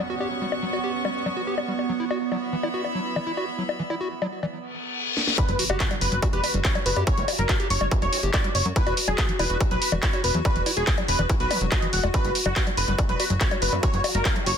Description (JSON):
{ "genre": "psychedelic trance", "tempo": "142 BPM", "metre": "4/4", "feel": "straight", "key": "unclear", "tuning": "A4 = 440 Hz", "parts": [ { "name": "evolving wavetable pad", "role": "sustained chords", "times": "0.0-14.6 s", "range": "B3 to F#4", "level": "-32 LUFS", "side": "right 2 dB", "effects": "chorus, built-in reverb, vintage 12-bit sampler grit, sidechain pumping" }, { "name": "overdriven acid bass", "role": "riff", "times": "0.0-14.5 s", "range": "E3 to G4", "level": "-32 LUFS", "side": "equal", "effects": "distortion, auto-pan, sidechain pumping, digital delay" }, { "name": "downlifter, reverse cymbal and impact", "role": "sound effects", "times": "0.0-7.1 s", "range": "none", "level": "-30 LUFS", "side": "left 4 dB", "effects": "none" }, { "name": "warm studio string section", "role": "texture", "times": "0.0-4.5 s", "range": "B3 to C#6", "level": "-32 LUFS", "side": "equal", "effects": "sidechain pumping" }, { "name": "techno drum kit", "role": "drums", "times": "0.2-14.5 s", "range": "bongos, handclaps, hi-hat, snare drum", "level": "-28 LUFS", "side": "left 2 dB", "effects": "low-pass filter on hats, low-pass filter on perc, low-pass filter on snare, low-pass filter on toms, low-pass filter on room" }, { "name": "wide unison lead", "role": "melody", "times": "5.4-14.6 s", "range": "F#4 to F#5", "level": "-28 LUFS", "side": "equal", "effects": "phaser, sidechain pumping, digital delay" }, { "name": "electronic kick drum", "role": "drums", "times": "5.4-14.3 s", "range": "none", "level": "-24 LUFS", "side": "equal", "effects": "distortion" }, { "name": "plucky analog bass", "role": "bass", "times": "5.5-14.5 s", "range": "E1 to F#2", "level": "-26 LUFS", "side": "equal", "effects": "none" }, { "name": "vowel-sweep wobble bass", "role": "second line", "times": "7.0-8.3, 13.7-14.5 s", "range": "F#3 to C#4", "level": "-40 LUFS", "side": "left 2 dB", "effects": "none" } ], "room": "light reverb", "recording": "dense, heavily limited modern master", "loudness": "-22 LUFS", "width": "side -8 dB against mid", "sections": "0.0-5.4 A section; 5.4-14.6 B section", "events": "reverse cymbal 4.7-5.4; drum fill 5.2; drop 5.4-14.6; impact 5.4-7.1", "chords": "0.0 F#5; 2.0 E5; 5.4 Em69 (rootless); 8.8 E5; 12.1 Esus2 (rootless)" }